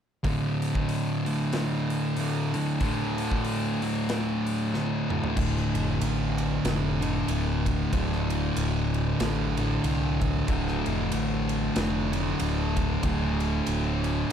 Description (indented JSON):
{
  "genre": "stoner and doom metal",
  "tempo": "94 BPM",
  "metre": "4/4",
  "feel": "swing 58% on 8ths",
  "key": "unclear",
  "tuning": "A4 = 439 Hz",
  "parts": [
    { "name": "thick fuzz guitar", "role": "riff", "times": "0.2-14.3 s", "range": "D2 to D3", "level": "-29 LUFS", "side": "left 7 dB", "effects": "distortion" },
    { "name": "thick fuzz guitar", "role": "riff", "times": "0.2-14.3 s", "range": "D2 to D3", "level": "-29 LUFS", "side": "right 9 dB", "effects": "distortion" },
    { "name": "big rock drum kit", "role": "drums", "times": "0.2-14.2 s", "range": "crash cymbal, hi-hat, kick drum, ride cymbal, snare drum, toms", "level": "-33 LUFS", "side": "equal", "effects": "none" },
    { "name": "growling picked electric bass", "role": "bass", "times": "5.4-14.2 s", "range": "D1 to C2", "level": "-30 LUFS", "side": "equal", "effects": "overdrive" }
  ],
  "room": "light reverb, studio reverb",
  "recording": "dark, warm production",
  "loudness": "-24 LUFS",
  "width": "side -8 dB against mid",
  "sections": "0.2-5.4 A section; 5.4-14.3 B section",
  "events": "drum fill 4.7-5.4",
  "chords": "0.2 D5; 5.4 Dm"
}